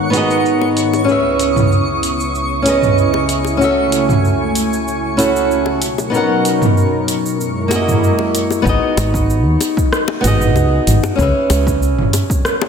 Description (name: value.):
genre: sunset chillout.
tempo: 95 BPM.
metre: 4/4.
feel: straight.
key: unclear.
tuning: A4 = 440 Hz.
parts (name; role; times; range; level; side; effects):
flamenco guitar; accompaniment; 0.0-12.7 s; A#3 to F#5; -16 LUFS; moving between left 4 dB and right 6 dB; auto-pan, tape echo.
lush unison pad; sustained chords; 0.0-8.6 s; C#2 to D#6; -20 LUFS; left 1 dB; chorus.
twinkling granular texture; texture; 0.0-8.7 s; C#5 to C#6; -26 LUFS; equal; built-in reverb.
deep house drum kit; drums; 0.1-12.6 s; cabasa, hi-hat, rim click, toms; -19 LUFS; equal; overdrive, low-pass filter on hats, low-pass filter on perc, low-pass filter on toms, low-pass filter on snare, low-pass filter on room.
bongos; percussion; 0.6-12.7 s; none; -27 LUFS; left 7 dB; none.
fingered electric bass; bass; 8.7-12.1 s; G#1 to D#2; -15 LUFS; equal; none.
electronic kick drum; drums; 8.7-12.4 s; none; -18 LUFS; equal; overdrive.
room: wet concert hall reverb, RT60 2.0 s.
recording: big arena sound.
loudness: -13 LUFS.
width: side -6 dB against mid.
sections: 0.0-8.7 A section; 8.7-12.7 B section.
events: none.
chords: 0.0 G#m7; 1.1 C#m9; 3.6 F#m7/C#; 5.8 Bmaj7; 7.4 F#9; 8.7 G#m7; 11.2 C#m7.